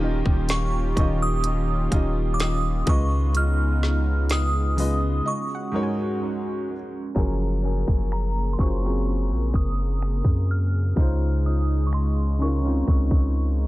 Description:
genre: contemporary R&B.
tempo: 63 BPM.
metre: 4/4.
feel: straight.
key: Db major.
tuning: A4 = 440 Hz.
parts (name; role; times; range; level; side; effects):
clear concert grand piano; accompaniment; 0.0-13.7 s; Ab2 to Eb5; -28 LUFS; left 1 dB; analog delay.
warm analog pad; sustained chords; 0.0-13.7 s; Db3 to Bb4; -31 LUFS; right 1 dB; chorus.
long sustained 808-style bass; bass; 0.0-13.7 s; Eb1 to Gb2; -23 LUFS; equal; none.
soft round pluck; texture; 0.0-8.1 s; Db5 to Ab5; -40 LUFS; right 1 dB; chorus, analog delay.
trap drum kit; drums; 0.3-13.6 s; finger snaps, hi-hat, kick drum, snare drum; -22 LUFS; equal; none.
glassy synth bell; melody; 0.5-13.7 s; Bb5 to F6; -31 LUFS; right 1 dB; chorus, analog delay.
room: little or no reverb.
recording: echo-heavy mix, low-pass filter.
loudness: -21 LUFS.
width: side -17 dB against mid.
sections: 0.0-7.2 A section; 7.2-13.7 B section.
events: break 5.3-7.2.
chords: 0.0 Eb7; 2.9 Db7; 5.3 Ab7sus4; 7.2 Gbmaj7; 11.0 Dbmaj7.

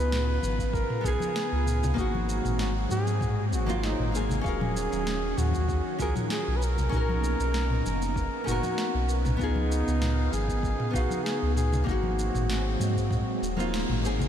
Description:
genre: sunset chillout.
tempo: 97 BPM.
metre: 4/4.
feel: straight.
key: unclear.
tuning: A4 = 440 Hz.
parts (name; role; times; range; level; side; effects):
breathy flugelhorn; melody; 0.0-13.7 s; Eb4 to Cb5; -32 LUFS; equal; diffuse ambient delay.
nylon-string guitar; accompaniment; 0.0-14.3 s; Bb3 to F5; -33 LUFS; moving between left 3 dB and right 3 dB; auto-pan, diffuse ambient delay.
soft string machine; sustained chords; 0.0-14.3 s; Db3 to F5; -35 LUFS; equal; phaser, ensemble chorus.
warm sub bass; bass; 0.0-14.3 s; Eb1 to Ab2; -28 LUFS; equal; tube saturation.
smooth R&B drum kit; drums; 0.1-14.3 s; shaker, snare drum, toms; -35 LUFS; equal; overdrive.
congas; percussion; 0.4-14.3 s; none; -38 LUFS; left 3 dB; none.
electronic kick drum; drums; 0.6-13.2 s; none; -33 LUFS; equal; overdrive.
room: moderate huge ambient reverb, RT60 8.8 s.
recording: dreamy mix soaked in reverb.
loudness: -25 LUFS.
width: side -9 dB against mid.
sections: 0.0-14.3 A section.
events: band accent 13.7-14.0.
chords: 0.0 Db7; 2.0 Ab7; 4.5 Ebm7; 6.6 Bmaj7; 9.4 Db7; 11.9 Ab7.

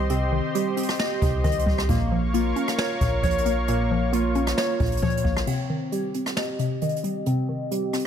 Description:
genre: hip hop, trap.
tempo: 134 BPM.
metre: 4/4.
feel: half-time.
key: C phrygian.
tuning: A4 = 440 Hz.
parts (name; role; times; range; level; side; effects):
hollow square pluck; accompaniment; 0.0-8.1 s; Bb2 to Db4; -27 LUFS; left 1 dB; chorus, low-pass filter.
warm analog pad; sustained chords; 0.0-5.4 s; G4 to Db6; -31 LUFS; right 1 dB; chorus.
warbly lo-fi synth keys; arpeggios; 0.0-8.1 s; Bb3 to Eb5; -27 LUFS; equal; chorus, low-pass filter, tape echo.
long sustained 808-style bass; bass; 0.0-5.5 s; Bb1 to Bb2; -27 LUFS; equal; none.
jazz brush drum kit; drums; 0.1-8.0 s; crash cymbal, hi-hat, kick drum, rim click, snare drum; -28 LUFS; equal; none.
room: light reverb, small room ambience.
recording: none.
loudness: -22 LUFS.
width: side -8 dB against mid.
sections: 0.0-5.5 A section; 5.5-8.1 B section.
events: break 5.5-8.1; filter sweep 5.5-8.1.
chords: 0.0 Cm; 1.9 Bbm; 5.5 Cm.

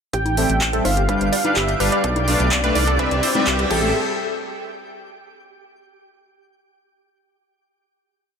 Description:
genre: progressive house.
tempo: 126 BPM.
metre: 4/4.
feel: straight.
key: A minor.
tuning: A4 = 440 Hz.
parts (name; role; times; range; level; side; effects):
wide unison lead; melody; 0.1-3.9 s; A4 to G5; -24 LUFS; right 1 dB; sidechain pumping, ping-pong delay.
wide unison pluck; arpeggios; 0.1-3.9 s; G4 to D5; -28 LUFS; right 1 dB; sidechain pumping, ping-pong delay.
dark detuned saw bass; bass; 0.1-3.9 s; G1 to C2; -22 LUFS; equal; sidechain pumping.
electronic kick drum; drums; 0.1-3.8 s; none; -31 LUFS; equal; none.
pop drum kit; drums; 0.1-3.8 s; crash cymbal, handclaps, hi-hat; -24 LUFS; equal; overdrive, sidechain pumping on hats, sidechain pumping on cymbals.
riser; sound effects; 1.7-3.9 s; none; -29 LUFS; left 2 dB; none.
twinkling granular texture; texture; 1.0-4.0 s; G4 to G5; -34 LUFS; equal; built-in reverb, sidechain pumping.
congas; percussion; 0.3-3.9 s; none; -28 LUFS; left 2 dB; sidechain pumping on perc.
soft supersaw; stabs; 0.4-3.9 s; G3 to F5; -23 LUFS; left 1 dB; cassette tape, sidechain pumping, low-pass filter, ping-pong delay.
room: light reverb.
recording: none.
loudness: -16 LUFS.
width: side -6 dB against mid.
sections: 0.1-3.9 build; 3.9-5.8 final hit.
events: build-up 0.1-3.9; filter sweep on synth pluck 0.1-3.9; filter sweep on supersaw synth 0.1-3.9; riser 1.7-3.9.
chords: 0.1 Am7; 1.1 G7; 2.0 Bm7b5; 3.0 Cmaj7; 3.7 Am7; 3.9 N.C..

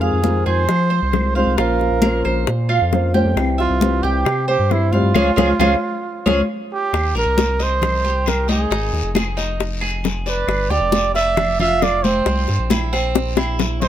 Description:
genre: latin, Cuban son and guajira.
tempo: 135 BPM.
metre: 4/4.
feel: straight.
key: unclear.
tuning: A4 = 441 Hz.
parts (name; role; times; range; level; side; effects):
breathy trumpet; melody; 0.0-13.9 s; E4 to E5; -21 LUFS; right 3 dB; none.
nylon-string guitar; accompaniment; 0.0-6.4 s; C3 to C5; -22 LUFS; left 2 dB; none.
Cuban tres; arpeggios; 0.0-13.9 s; C4 to F5; -23 LUFS; right 3 dB; none.
round analog bass; bass; 0.0-13.9 s; F1 to F3; -21 LUFS; equal; none.
bongos; percussion; 0.0-13.9 s; none; -22 LUFS; left 7 dB; none.
congas; percussion; 0.0-13.8 s; none; -23 LUFS; left 1 dB; none.
claves; percussion; 0.7-13.6 s; none; -31 LUFS; left 5 dB; none.
guiro; percussion; 6.9-13.9 s; none; -31 LUFS; left 5 dB; none.
room: light reverb.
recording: none.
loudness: -16 LUFS.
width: side -11 dB against mid.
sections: 0.0-6.9 A section; 6.9-13.9 B section.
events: band accent 5.1-6.9; drum fill 6.3-6.9, 13.2-13.9.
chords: 0.0 Fm7; 1.6 Bbmadd9; 3.4 C; 5.1 Db; 6.9 Eb; 8.7 Ab5; 10.5 G5; 12.3 C.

